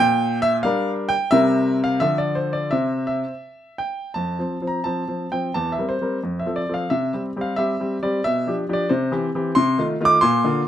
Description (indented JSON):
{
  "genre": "classical-period piano sonatina",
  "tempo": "82-91 BPM",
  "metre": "2/4",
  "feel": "rubato",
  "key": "F major",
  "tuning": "A4 = 442 Hz",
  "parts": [
    { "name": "clear baby grand piano", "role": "solo", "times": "0.0-10.7 s", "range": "E2 to D6", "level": "-19 LUFS", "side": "equal", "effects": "none" }
  ],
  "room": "light reverb",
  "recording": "none",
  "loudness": "-19 LUFS",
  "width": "side -11 dB against mid",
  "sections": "0.0-4.2 A section; 4.2-10.7 B section",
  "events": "none",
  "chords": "0.0 Gm/Bb; 1.3 C7; 2.0 Dm; 2.7 N.C.; 4.2 F5; 5.5 C7/E; 6.2 F; 6.9 C5; 8.2 G7/B; 8.9 C; 9.6 F7/C"
}